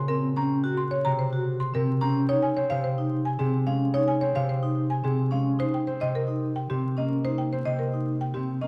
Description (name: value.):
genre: classical, minimalist pattern music.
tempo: 109 BPM.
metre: 3/4.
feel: straight.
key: unclear.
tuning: A4 = 439 Hz.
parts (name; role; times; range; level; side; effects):
buzzing marimba with hard mallets; melody; 0.0-8.7 s; G4 to C6; -31 LUFS; equal; none.
concert harp; accompaniment; 0.0-8.7 s; Bb2 to C4; -30 LUFS; equal; none.
vibraphone with medium hard mallets; arpeggios; 0.1-8.7 s; C4 to C5; -32 LUFS; equal; none.
room: wet recital hall reverb, RT60 1.6 s.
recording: dark, warm production, vinyl crackle.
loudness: -26 LUFS.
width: mono.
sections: 0.0-8.7 A section.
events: none.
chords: 0.0 Gb; 2.3 Dbmaj7; 5.6 Eb.